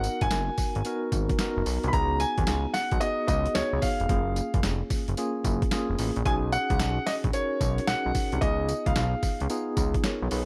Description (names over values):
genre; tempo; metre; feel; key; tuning
R&B, new jack swing; 111 BPM; 4/4; swing 65% on 16ths; unclear; A4 = 440 Hz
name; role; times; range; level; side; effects
warm concert grand piano; melody; 0.0-9.6 s; C#5 to B5; -32 LUFS; equal; tape echo
tine electric piano; accompaniment; 0.0-10.5 s; A#3 to C#5; -34 LUFS; equal; medium tremolo
fat analog bass; bass; 0.0-10.4 s; E#1 to D#2; -31 LUFS; equal; none
boom bap sampler-style drum kit; drums; 0.0-10.5 s; hi-hat, kick drum, snare drum, tambourine; -31 LUFS; equal; overdrive
room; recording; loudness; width
little or no reverb; none; -27 LUFS; mono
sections
0.0-10.5 A section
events
none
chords
0.0 G#m9; 1.9 C#9sus4; 4.1 F#maj7; 6.3 B69; 8.4 C#7